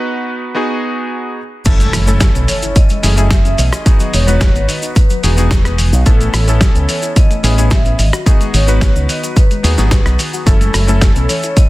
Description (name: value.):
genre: nu-disco, nu disco.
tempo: 109 BPM.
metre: 4/4.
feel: straight.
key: F# dorian.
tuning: A4 = 440 Hz.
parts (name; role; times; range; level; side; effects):
clear electric grand piano; accompaniment; 0.0-11.7 s; A3 to B4; -20 LUFS; equal; dub echo.
vibraphone with hard mallets; melody; 1.7-11.7 s; A4 to E5; -24 LUFS; equal; dub echo.
soft round pluck; arpeggios; 1.7-11.6 s; D#3 to F#4; -24 LUFS; left 3 dB; chorus, vintage 12-bit sampler grit, sidechain pumping.
fingered electric bass with an envelope filter; bass; 1.7-11.3 s; E1 to D#2; -13 LUFS; equal; sidechain pumping.
dusty soul sampler-style drum kit; drums; 1.7-11.7 s; crash cymbal, hi-hat, rim click, shaker, snare drum; -20 LUFS; equal; studio reverb.
electronic kick drum; drums; 1.7-11.7 s; none; -10 LUFS; equal; studio reverb.
cabasa; percussion; 1.7-11.7 s; none; -29 LUFS; left 1 dB; none.
impact; sound effects; 1.7-3.9 s; none; -22 LUFS; equal; none.
room: little or no reverb.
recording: dense, heavily limited modern master.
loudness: -10 LUFS.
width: side -18 dB against mid.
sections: 0.0-1.7 A section; 1.7-11.7 B section.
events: break 0.0-1.7; drop 1.7-11.7; impact 1.7-3.9.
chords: 0.0 G#m7 (rootless); 0.6 B6; 1.7 F#m9; 3.9 Emaj9; 6.1 Amaj9; 8.0 G#m7; 10.5 F#m9.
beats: 0.01 0.56 1.11 | 1.66 2.21 2.76 3.31 | 3.86 4.41 4.96 5.51 | 6.06 6.61 7.16 7.71 | 8.26 8.81 9.37 9.92 | 10.47 11.02 11.57.